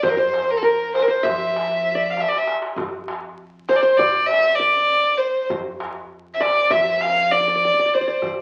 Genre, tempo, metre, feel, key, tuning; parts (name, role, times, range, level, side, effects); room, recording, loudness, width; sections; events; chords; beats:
Turkish makam ensemble; 198 BPM (eighths); 9/8; straight; A4 = 441 Hz
warm violin; melody; 0.0-8.2 s; A4 to F5; -20 LUFS; equal
qanun; second line; 0.0-8.4 s; Bb4 to E5; -27 LUFS; equal
upright bass; bass; 0.0-8.4 s; F2 to F3; -41 LUFS; equal
darbuka; percussion; 0.0-8.4 s; -32 LUFS; equal
wet studio reverb, RT60 0.6 s; very old 78 rpm record, vinyl crackle; -19 LUFS; mono
0.0-8.4 A section
drum fill 2.2-2.8
| 0.04 0.34 0.65 0.95 1.25 1.56 1.86 2.17 2.47 | 2.77 3.08 3.38 3.68 3.99 4.29 4.59 4.90 5.20 | 5.50 5.81 6.11 6.41 6.72 7.02 7.32 7.63 7.93 | 8.23